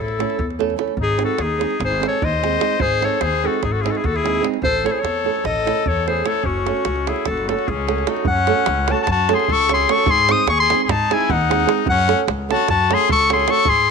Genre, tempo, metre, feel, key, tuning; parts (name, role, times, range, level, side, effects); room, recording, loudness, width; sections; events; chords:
balkan folk, Balkan wedding band; 297 BPM (eighths); 9/8; straight; F# dorian sharp4; A4 = 440 Hz
bright clarinet; melody; 0.0-13.9 s; F#4 to D#6; -20 LUFS; left 2 dB; slapback echo
bright trumpet; second line; 0.0-13.9 s; C#4 to B#4; -23 LUFS; left 15 dB
upright bass; bass; 0.0-13.9 s; F#1 to G#2; -25 LUFS; left 1 dB
davul; percussion; 0.1-13.8 s; -26 LUFS; right 6 dB
flamenco guitar; accompaniment; 0.2-13.6 s; G#3 to A4; -23 LUFS; right 12 dB
light reverb, small room ambience; 1960s-style stereo with parts hard left and right; -16 LUFS; side -5 dB against mid
0.0-8.3 A section; 8.3-13.9 B section
0.0 A; 1.0 G#; 4.6 A; 6.4 F#m; 10.1 G#; 11.9 F#m